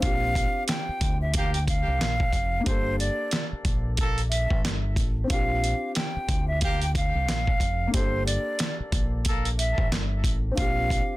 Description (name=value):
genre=hip hop, boom-bap hip-hop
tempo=91 BPM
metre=4/4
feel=swing 60% on 16ths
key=G minor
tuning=A4 = 440 Hz
part: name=breathy silver concert flute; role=melody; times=0.0-11.2 s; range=C5 to G5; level=-29 LUFS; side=right 1 dB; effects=digital delay
part: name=dark upright piano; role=accompaniment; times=0.0-11.2 s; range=Bb3 to A4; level=-34 LUFS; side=left 2 dB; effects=none
part: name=deep dub fingered electric bass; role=bass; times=0.0-11.0 s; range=F1 to D2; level=-28 LUFS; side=equal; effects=none
part: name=dusty soul sampler-style drum kit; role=drums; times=0.0-11.1 s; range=hi-hat, kick drum, snare drum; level=-26 LUFS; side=equal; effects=none
part: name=mellow trumpet section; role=stabs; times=1.4-9.5 s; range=Bb3 to A4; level=-34 LUFS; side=right 1 dB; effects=digital delay
room=little or no reverb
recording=dense, heavily limited modern master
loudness=-23 LUFS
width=side -18 dB against mid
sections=0.0-11.2 A section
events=none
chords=0.0 Bb6; 2.7 Gmadd9; 5.3 Bb6; 7.9 Gmadd9; 10.6 Bb6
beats=| 0.03 0.69 1.35 2.00 | 2.66 3.32 3.98 4.64 | 5.30 5.96 6.62 7.28 | 7.94 8.60 9.26 9.92 | 10.58